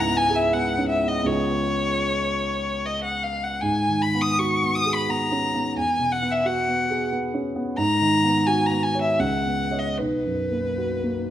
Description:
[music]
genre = classical, impressionist duo for violin and grand piano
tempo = 73-92 BPM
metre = 3/4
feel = rubato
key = unclear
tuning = A4 = 442 Hz
[part]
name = warm violin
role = melody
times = 0.0-11.3 s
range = B4 to D#6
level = -23 LUFS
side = left 1 dB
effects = none
[part]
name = dark grand piano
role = accompaniment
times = 0.0-11.3 s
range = B1 to D#5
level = -24 LUFS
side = right 1 dB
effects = none
[sound]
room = wet recital hall reverb, RT60 1.6 s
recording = none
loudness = -21 LUFS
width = side -11 dB against mid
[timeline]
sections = 0.0-11.3 A section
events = none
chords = 0.0 C#m7; 1.3 C#9; 3.6 G#m9; 5.8 Eadd9; 7.8 G#m11; 9.2 C#9sus4; 10.0 B5

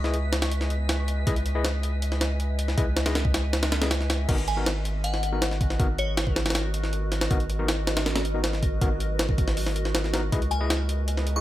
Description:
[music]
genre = drum and bass, jungle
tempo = 159 BPM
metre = 4/4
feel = straight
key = G# minor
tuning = A4 = 439 Hz
[part]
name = overdriven tine electric piano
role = stabs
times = 0.0-11.4 s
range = B3 to D#5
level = -34 LUFS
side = left 3 dB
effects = vintage 12-bit sampler grit, dub echo
[part]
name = saturated sub bass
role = bass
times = 0.0-11.4 s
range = G#1 to C#2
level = -27 LUFS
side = equal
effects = none
[part]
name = jungle sampler-style drum kit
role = drums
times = 0.0-11.4 s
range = crash cymbal, hi-hat, kick drum, snare drum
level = -26 LUFS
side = equal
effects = studio reverb
[part]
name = wind-like tuned noise texture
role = texture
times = 0.0-4.3 s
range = B6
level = -44 LUFS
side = left 1 dB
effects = built-in reverb
[part]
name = glassy synth bell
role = melody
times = 4.5-6.4, 10.5-11.4 s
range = C#5 to C#6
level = -34 LUFS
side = left 1 dB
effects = chorus, phaser, dub echo
[sound]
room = little or no reverb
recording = none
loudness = -23 LUFS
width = side -14 dB against mid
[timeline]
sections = 0.0-4.3 A section; 4.3-11.4 A section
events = drop 0.0-4.3, 4.3-11.4; kick drops out 3.5-4.3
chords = 0.0 C#m7; 4.3 G#m7; 10.3 C#m7

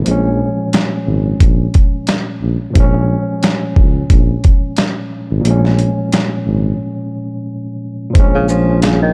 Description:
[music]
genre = hip hop, boom-bap hip-hop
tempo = 89 BPM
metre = 4/4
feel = swing 56% on 16ths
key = Bb minor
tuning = A4 = 440 Hz
[part]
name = tine electric piano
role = accompaniment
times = 0.0-9.1 s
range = Bb2 to Db4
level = -21 LUFS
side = equal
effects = overdrive, cassette tape, high-pass filter, low-pass filter
[part]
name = dark tuba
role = bass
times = 0.0-9.1 s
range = Ab1 to Db2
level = -18 LUFS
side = equal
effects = none
[part]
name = dusty soul sampler-style drum kit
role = drums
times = 0.1-9.0 s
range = hi-hat, kick drum, shaker, snare drum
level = -15 LUFS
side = equal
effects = overdrive
[part]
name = breathy tenor saxophone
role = melody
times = 8.3-9.1 s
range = Db3 to F3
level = -19 LUFS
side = equal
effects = high-pass filter, low-pass filter, digital delay
[sound]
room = digital ambience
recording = dark, warm production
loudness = -14 LUFS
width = mono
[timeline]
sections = 0.0-8.2 A section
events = break 6.8-8.2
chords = 0.0 Bbm7

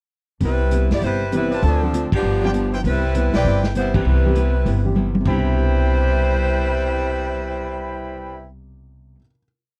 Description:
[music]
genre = jazz, big band swing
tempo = 198 BPM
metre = 4/4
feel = swing 63% on 8ths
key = C major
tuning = A4 = 439 Hz
[part]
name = clear saxophone section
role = melody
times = 0.4-8.5 s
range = F3 to D5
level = -26 LUFS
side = equal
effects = none
[part]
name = archtop guitar, miked and amplified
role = accompaniment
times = 0.4-9.3 s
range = G2 to F4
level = -30 LUFS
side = equal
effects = none
[part]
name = upright bass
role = bass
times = 0.4-9.1 s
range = G1 to G2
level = -23 LUFS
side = equal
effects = none
[part]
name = vintage drum kit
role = drums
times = 0.4-5.3 s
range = crash cymbal, hi-hat, kick drum, snare drum, toms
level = -26 LUFS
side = equal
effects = none
[part]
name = warm baby grand piano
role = accompaniment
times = 1.3-9.4 s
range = B2 to G6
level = -28 LUFS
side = equal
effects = none
[part]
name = bright trumpet section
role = stabs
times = 1.5-8.5 s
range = C4 to B5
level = -30 LUFS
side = equal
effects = none
[sound]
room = little or no reverb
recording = dry, close 1970s-style studio recording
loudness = -20 LUFS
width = mono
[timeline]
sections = 0.4-5.3 A section; 5.3-7.7 final chord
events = band accent 2.1, 3.9; drum fill 5.0-5.3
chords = 0.4 Cmaj7; 1.6 Dm7; 2.2 G7; 2.8 Cmaj7

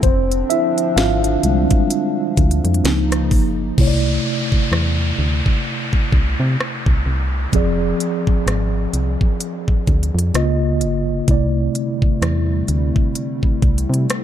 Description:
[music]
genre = contemporary R&B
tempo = 64 BPM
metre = 4/4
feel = swing 58% on 16ths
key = C major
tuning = A4 = 440 Hz
[part]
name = mellow tine electric piano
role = accompaniment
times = 0.0-14.2 s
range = C3 to F5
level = -20 LUFS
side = equal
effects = medium stereo tremolo
[part]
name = hollow soft pad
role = sustained chords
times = 0.0-3.8, 11.3-14.2 s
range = Db3 to E4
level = -25 LUFS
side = left 1 dB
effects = chorus, sidechain pumping
[part]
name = solid FM bass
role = bass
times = 0.0-14.1 s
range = F1 to C3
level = -19 LUFS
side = equal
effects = none
[part]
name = trap drum kit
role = drums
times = 0.0-14.2 s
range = crash cymbal, hi-hat, kick drum, rim click, snare drum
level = -18 LUFS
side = equal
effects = none
[part]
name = downlifter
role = sound effects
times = 3.8-11.3 s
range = none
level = -28 LUFS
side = equal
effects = none
[sound]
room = little or no reverb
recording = none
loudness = -15 LUFS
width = side -10 dB against mid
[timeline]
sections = 0.0-3.8 A section; 3.8-14.2 B section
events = tine electric piano solo 0.0-3.8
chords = 0.0 Fm6; 2.8 Db69; 3.8 C69; 7.5 Fm6; 10.3 Db69; 11.3 C69

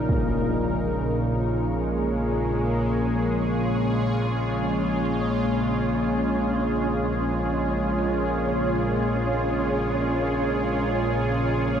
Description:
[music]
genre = dark ambient drone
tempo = free time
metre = none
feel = none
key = Bb minor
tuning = A4 = 439 Hz
[part]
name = sweeping resonant pad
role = sustained chords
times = 0.0-11.8 s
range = Db3 to Bb4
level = -26 LUFS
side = right 1 dB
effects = chorus
[part]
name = analog drone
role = drone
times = 0.0-11.8 s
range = Bb1 to Bb2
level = -25 LUFS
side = left 1 dB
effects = chorus
[part]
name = wind-like tuned noise texture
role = texture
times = 1.1-11.8 s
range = Db4 to Db5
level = -30 LUFS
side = right 1 dB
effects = built-in reverb
[sound]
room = wet huge ambient reverb, RT60 7.3 s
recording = none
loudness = -22 LUFS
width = side -8 dB against mid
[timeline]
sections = 0.0-11.8 A section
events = none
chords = 0.0 Bbm7

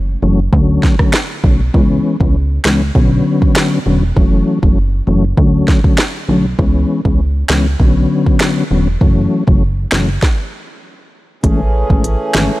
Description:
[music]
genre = dancehall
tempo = 99 BPM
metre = 4/4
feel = straight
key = unclear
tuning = A4 = 441 Hz
[part]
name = plucky analog bass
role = bass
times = 0.0-12.5 s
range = E1 to D2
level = -15 LUFS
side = equal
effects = none
[part]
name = mellow tonewheel organ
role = accompaniment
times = 0.2-12.5 s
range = D3 to C#4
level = -16 LUFS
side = left 2 dB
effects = chorus vibrato
[part]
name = afro-pop drum kit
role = drums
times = 0.5-12.5 s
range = finger snaps, hi-hat, kick drum, rim click, snare drum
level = -14 LUFS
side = equal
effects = none
[part]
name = pedal harmonium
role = sustained chords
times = 11.4-12.6 s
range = E3 to G#4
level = -19 LUFS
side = right 2 dB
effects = sidechain pumping
[sound]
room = little or no reverb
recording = none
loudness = -11 LUFS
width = side -18 dB against mid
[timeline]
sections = 0.0-11.4 A section; 11.4-12.6 B section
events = break 0.0-1.7; stop 10.2-11.4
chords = 0.0 F#m7; 0.5 Dmaj7; 1.7 C#m7; 3.0 Bmadd9; 4.2 F#m7; 5.4 Dmaj7; 6.6 C#m7; 7.8 Bmadd9; 9.0 F#m7; 10.2 N.C.; 11.4 Amaj7

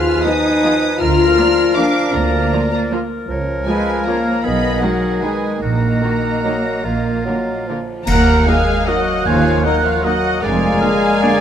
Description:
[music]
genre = classical, orchestral ballroom waltz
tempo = 138-170 BPM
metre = 3/4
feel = rubato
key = Eb minor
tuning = A4 = 438 Hz
[part]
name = muted studio violin section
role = melody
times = 0.0-11.4 s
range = Eb5 to F6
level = -24 LUFS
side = left 2 dB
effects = none
[part]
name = clear oboe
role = second line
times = 0.0-11.4 s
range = F4 to Ab5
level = -25 LUFS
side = right 1 dB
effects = none
[part]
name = flute section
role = second line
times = 0.0-11.4 s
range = Bb4 to Gb6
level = -25 LUFS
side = right 1 dB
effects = none
[part]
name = mellow clarinet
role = second line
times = 0.0-11.4 s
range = Ab4 to F5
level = -27 LUFS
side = left 3 dB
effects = none
[part]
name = mellow bassoon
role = accompaniment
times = 0.0-11.4 s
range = Eb3 to Bb3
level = -24 LUFS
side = right 2 dB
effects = none
[part]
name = dark French horn section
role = sustained chords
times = 0.0-11.4 s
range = Eb3 to F4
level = -20 LUFS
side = left 4 dB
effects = none
[part]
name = muted studio cello section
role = bass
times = 0.0-10.8 s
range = Eb2 to F4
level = -23 LUFS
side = right 2 dB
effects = none
[part]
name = muted studio double bass section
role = bass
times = 0.0-10.8 s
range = F1 to Eb2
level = -21 LUFS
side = right 3 dB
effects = none
[part]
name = muted studio violin section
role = second line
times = 0.2-11.4 s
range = Db4 to Gb5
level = -27 LUFS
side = left 2 dB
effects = none
[part]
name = muted studio viola section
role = accompaniment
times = 0.2-11.3 s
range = D3 to Eb4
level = -26 LUFS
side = right 1 dB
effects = none
[part]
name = cymbal swell, clash cymbals and concert bass drum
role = percussion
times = 5.6-8.8 s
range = none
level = -23 LUFS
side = equal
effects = none
[part]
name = dark trumpet section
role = stabs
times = 8.1-11.4 s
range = Eb4 to Bb4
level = -23 LUFS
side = right 2 dB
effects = none
[part]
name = mellow trombone section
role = sustained chords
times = 8.5-11.4 s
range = D3 to Bb3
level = -28 LUFS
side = right 4 dB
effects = none
[sound]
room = light reverb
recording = close, detailed microphones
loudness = -14 LUFS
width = side -9 dB against mid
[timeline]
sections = 0.0-8.1 A section; 8.1-11.4 B section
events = band accent 8.1-8.5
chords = 0.0 Fm7b5/Eb; 1.0 Bb/D; 3.3 Bbm/Db; 4.4 Abm/Cb; 5.6 Ebm/Bb; 6.9 Bb; 8.1 Ebm; 10.4 Bb7/F

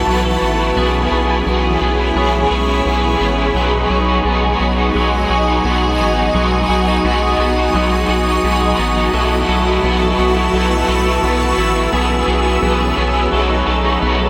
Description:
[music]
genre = dream pop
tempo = 86 BPM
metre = 4/4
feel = straight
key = B mixolydian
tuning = A4 = 440 Hz
[part]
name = overdriven semi-hollow guitar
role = accompaniment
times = 0.0-14.3 s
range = B2 to G#4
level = -21 LUFS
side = equal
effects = harmonic tremolo, ensemble chorus
[part]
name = granular cloud pad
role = sustained chords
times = 0.0-14.3 s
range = F#4 to E6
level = -21 LUFS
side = equal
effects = built-in reverb
[part]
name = clean electric guitar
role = arpeggios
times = 0.0-14.3 s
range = F#3 to A4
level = -22 LUFS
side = equal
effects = ensemble chorus, diffuse ambient delay
[part]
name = round analog bass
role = bass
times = 0.0-14.3 s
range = A1 to B1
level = -22 LUFS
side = equal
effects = none
[sound]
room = wet huge ambient reverb, RT60 8.1 s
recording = dreamy mix soaked in reverb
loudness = -15 LUFS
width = mono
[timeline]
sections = 0.0-14.3 A section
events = none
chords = 0.0 B7sus4; 0.8 C#m7/B; 3.6 B6; 9.1 B7sus4; 11.9 C#m7/B; 13.3 B7

